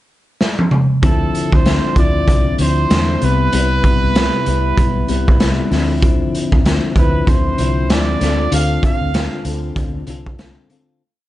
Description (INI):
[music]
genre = indie pop, bedroom pop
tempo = 96 BPM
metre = 4/4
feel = swing 60% on 16ths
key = D dorian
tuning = A4 = 440 Hz
[part]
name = raw garage drum kit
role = drums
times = 0.4-10.9 s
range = hi-hat, kick drum, snare drum, toms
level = -16 LUFS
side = equal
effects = vintage 12-bit sampler grit
[part]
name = bright trumpet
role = melody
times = 1.0-9.4 s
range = A4 to F5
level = -21 LUFS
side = right 3 dB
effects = lush chorus, plate reverb, analog delay
[part]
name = clean electric guitar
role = accompaniment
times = 1.0-11.0 s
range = C3 to A4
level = -20 LUFS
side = left 4 dB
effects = analog chorus, warbly pitch drift
[part]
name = vintage muted fingered electric bass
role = bass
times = 1.0-10.6 s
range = B1 to E2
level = -19 LUFS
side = equal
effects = none
[sound]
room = moderate small room reverb, RT60 0.5 s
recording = dark, warm production, nothing above 10.9 kHz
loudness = -13 LUFS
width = side -15 dB against mid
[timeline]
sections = 0.0-1.0 pickup bar; 1.0-11.0 A section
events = drum fill 0.4-1.0; fade-out 8.5-11.0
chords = 0.0 N.C.; 1.0 Dm9; 3.2 Cmaj7; 5.7 Dm9; 8.2 Dm7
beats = 0.40 | 1.03 1.65 2.28 2.90 | 3.53 4.15 4.78 5.40 | 6.03 6.65 7.27 7.89 | 8.52 9.14 9.76 10.38